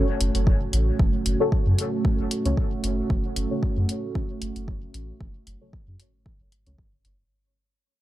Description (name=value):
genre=dub techno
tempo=114 BPM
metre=4/4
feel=swing 54% on 16ths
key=F# minor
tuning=A4 = 440 Hz
part: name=dark analog pad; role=sustained chords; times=0.1-7.3 s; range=A3 to F#4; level=-30 LUFS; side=right 3 dB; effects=chorus, phaser, sidechain pumping
part: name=deep mellow chord stab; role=stabs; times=0.0-6.8 s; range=C#4 to C#5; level=-30 LUFS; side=left 1 dB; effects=chorus, phaser, sidechain pumping, dub echo
part: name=soft dub sub bass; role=bass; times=0.2-7.2 s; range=F#1 to F#2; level=-25 LUFS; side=equal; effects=sidechain pumping
part: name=electronic hi-hat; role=drums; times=0.2-7.2 s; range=none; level=-33 LUFS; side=left 2 dB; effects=dub echo
part: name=electronic kick drum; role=drums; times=0.5-6.9 s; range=none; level=-24 LUFS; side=equal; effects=none
room=little or no reverb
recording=dark, warm production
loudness=-22 LUFS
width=side -14 dB against mid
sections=0.0-7.3 A section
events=fade-out 0.0-7.3; filter sweep on synth stab 0.0-7.3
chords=0.0 F#m